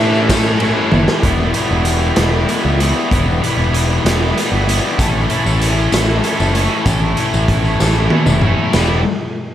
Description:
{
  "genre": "indie rock",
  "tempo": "64 BPM (dotted quarters)",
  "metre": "6/8",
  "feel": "straight",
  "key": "E dorian",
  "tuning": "A4 = 440 Hz",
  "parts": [
    { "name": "lightly driven lead guitar", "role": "melody", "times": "0.0-0.6 s", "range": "E5", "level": "-23 LUFS", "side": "right 2 dB", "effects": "plate reverb, tape echo" },
    { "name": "glockenspiel with rubber mallets", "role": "second line", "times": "0.0-0.6 s", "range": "E6", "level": "-39 LUFS", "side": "left 1 dB", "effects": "none" },
    { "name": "distorted electric guitar", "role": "riff", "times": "0.0-9.0 s", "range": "G3 to A4", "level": "-20 LUFS", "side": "right 7 dB", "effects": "overdrive, lush chorus" },
    { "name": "thick fuzz guitar", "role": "riff", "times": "0.0-9.0 s", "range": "E2 to E4", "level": "-20 LUFS", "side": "left 7 dB", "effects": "distortion" },
    { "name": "picked electric bass", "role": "bass", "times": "0.0-9.0 s", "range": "E1 to A2", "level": "-17 LUFS", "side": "equal", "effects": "none" },
    { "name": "tambourine", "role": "percussion", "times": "0.1-1.0, 5.0-9.0 s", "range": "none", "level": "-30 LUFS", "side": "left 6 dB", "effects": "none" },
    { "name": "raw garage drum kit", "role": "drums", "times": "0.3-8.9 s", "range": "crash cymbal, hi-hat, kick drum, ride cymbal, snare drum, toms", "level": "-17 LUFS", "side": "equal", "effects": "none" }
  ],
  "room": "light reverb",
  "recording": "none",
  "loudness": "-12 LUFS",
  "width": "side -11 dB against mid",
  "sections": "0.0-1.2 A section; 1.2-8.8 B section",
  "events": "drum fill 0.9-1.2, 7.8-8.8",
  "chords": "0.0 A; 1.2 Em; 5.0 A; 8.8 Em",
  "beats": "0.30 | 1.24 2.18 | 3.12 4.06 | 5.00 5.94 | 6.88 7.82 | 8.75"
}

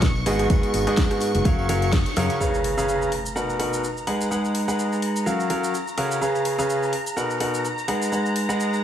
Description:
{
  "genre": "piano house",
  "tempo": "126 BPM",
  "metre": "4/4",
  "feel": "swing 56% on 16ths",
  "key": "unclear",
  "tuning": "A4 = 435 Hz",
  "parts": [
    { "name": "string machine, violins", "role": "sustained chords", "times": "0.0-8.8 s", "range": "A#5 to C#6", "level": "-31 LUFS", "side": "right 1 dB", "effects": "ensemble chorus, sidechain pumping" },
    { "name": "bright concert grand piano", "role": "riff", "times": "0.0-8.8 s", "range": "G#2 to F#5", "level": "-23 LUFS", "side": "equal", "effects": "sidechain pumping, digital delay" },
    { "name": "modern bright fingered electric bass", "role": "bass", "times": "0.0-2.3 s", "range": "F#1 to F#2", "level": "-25 LUFS", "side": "equal", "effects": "sidechain pumping" },
    { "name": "electronic kick drum", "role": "drums", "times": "0.0-2.0 s", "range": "none", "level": "-21 LUFS", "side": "equal", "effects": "overdrive" },
    { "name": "house drum kit", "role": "drums", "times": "0.0-8.8 s", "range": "hi-hat, rim click, shaker, snare drum", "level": "-32 LUFS", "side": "left 1 dB", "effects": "overdrive" },
    { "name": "tambourine", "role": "percussion", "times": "0.0-2.4 s", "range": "none", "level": "-39 LUFS", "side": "left 2 dB", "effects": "none" },
    { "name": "impact", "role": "sound effects", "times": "2.4-4.3 s", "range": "none", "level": "-32 LUFS", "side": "equal", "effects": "none" }
  ],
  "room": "light reverb",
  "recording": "small room ambience",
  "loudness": "-20 LUFS",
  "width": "side -10 dB against mid",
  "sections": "0.0-2.4 A section; 2.4-8.8 B section",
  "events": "band accent 1.9; impact 2.4-4.3",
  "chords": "0.3 G#m7; 1.5 F#maj7; 2.4 C#7; 3.1 Bmaj7; 4.1 G#m7; 5.3 F#maj7; 6.2 C#7; 6.9 Bmaj7; 7.9 G#m7",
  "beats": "0.02 | 0.50 0.98 1.45 1.93 | 2.40 2.88 3.36 3.83 | 4.31 4.79 5.26 5.74 | 6.21 6.69 7.17 7.64 | 8.12 8.60"
}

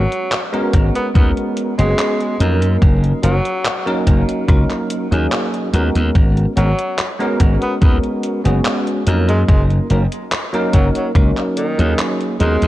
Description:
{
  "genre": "vaporwave",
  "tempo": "72 BPM",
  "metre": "4/4",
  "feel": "straight",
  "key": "G# minor",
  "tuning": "A4 = 441 Hz",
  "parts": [
    { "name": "clear tenor saxophone", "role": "melody", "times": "0.0-12.7 s", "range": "D#3 to B3", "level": "-24 LUFS", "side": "equal", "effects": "tape echo" },
    { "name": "glassy slap bass", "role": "bass", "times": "0.0-12.7 s", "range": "F#1 to F#2", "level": "-15 LUFS", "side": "equal", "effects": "none" },
    { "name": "detuned 8-bit digital drum machine", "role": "drums", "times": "0.1-12.7 s", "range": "handclaps, hi-hat", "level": "-24 LUFS", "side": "equal", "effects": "gated reverb" },
    { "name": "bell-like tine electric piano", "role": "accompaniment", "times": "0.5-12.7 s", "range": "F#3 to A#4", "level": "-19 LUFS", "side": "equal", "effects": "ensemble chorus, tape echo" },
    { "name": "electronic kick drum", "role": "drums", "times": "0.7-11.3 s", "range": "none", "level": "-13 LUFS", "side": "equal", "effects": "none" }
  ],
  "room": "light reverb",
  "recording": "cassette tape",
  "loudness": "-14 LUFS",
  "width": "side -15 dB against mid",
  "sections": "0.0-12.7 A section",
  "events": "none",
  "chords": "0.0 G#m11; 2.8 F#6; 6.2 G#m11; 9.5 F#6",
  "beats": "0.32 1.15 1.99 | 2.82 3.65 4.49 5.32 | 6.15 6.99 7.82 8.65 | 9.49 10.32 11.15 11.99"
}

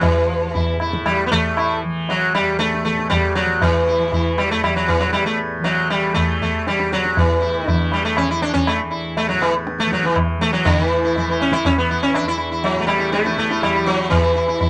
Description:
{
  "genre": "indian classical, Hindustani",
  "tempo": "119 BPM",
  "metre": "7/4",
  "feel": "straight",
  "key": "unclear",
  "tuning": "A4 = 440 Hz",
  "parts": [
    { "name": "sitar", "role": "melody", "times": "0.0-14.7 s", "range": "E3 to E4", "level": "-20 LUFS", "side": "equal", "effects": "none" },
    { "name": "tanpura", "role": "drone", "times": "0.0-14.7 s", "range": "E2 to E3", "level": "-28 LUFS", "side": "equal", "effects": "none" },
    { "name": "tabla", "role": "percussion", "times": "0.0-14.7 s", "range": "none", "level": "-25 LUFS", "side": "equal", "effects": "none" }
  ],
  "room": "moderate studio reverb, RT60 0.5 s",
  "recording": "none",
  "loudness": "-19 LUFS",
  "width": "mono",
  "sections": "0.0-10.7 A section; 10.7-14.7 B section",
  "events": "speeding up 0.0-14.7",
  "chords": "none",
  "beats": "| 0.02 0.54 1.05 1.57 2.08 2.59 3.11 | 3.62 4.13 4.64 5.14 5.65 6.16 6.66 | 7.17 7.67 8.17 8.67 9.17 9.67 10.17 | 10.66 11.16 11.65 12.15 12.64 13.13 13.62 | 14.11 14.60"
}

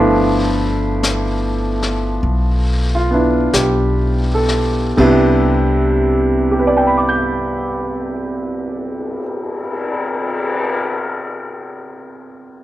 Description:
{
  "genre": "jazz ballad",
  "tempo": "39-55 BPM",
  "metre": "4/4",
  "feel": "swing 68% on 8ths",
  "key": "C major",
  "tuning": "A4 = 439 Hz",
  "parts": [
    { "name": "clear upright piano", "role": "accompaniment", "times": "0.0-12.6 s", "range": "C3 to G6", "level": "-16 LUFS", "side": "right 1 dB", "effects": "none" },
    { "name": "upright bass", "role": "bass", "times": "0.0-9.2 s", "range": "G1 to C2", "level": "-19 LUFS", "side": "equal", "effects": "none" },
    { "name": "jazz brush drum kit", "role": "drums", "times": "1.0-10.8 s", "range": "brushed snare drum, cymbal swell, hi-hat, kick drum, ride cymbal, snare drum", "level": "-24 LUFS", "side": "left 3 dB", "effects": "none" }
  ],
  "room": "light reverb",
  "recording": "none",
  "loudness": "-15 LUFS",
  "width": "side -14 dB against mid",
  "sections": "0.0-5.0 A section; 5.0-11.0 B section",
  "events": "slowing down 0.0-5.0",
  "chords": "0.0 G13; 5.0 Cmaj9",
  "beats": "1.03 2.23 3.53 | 4.97 6.50 8.01 9.53"
}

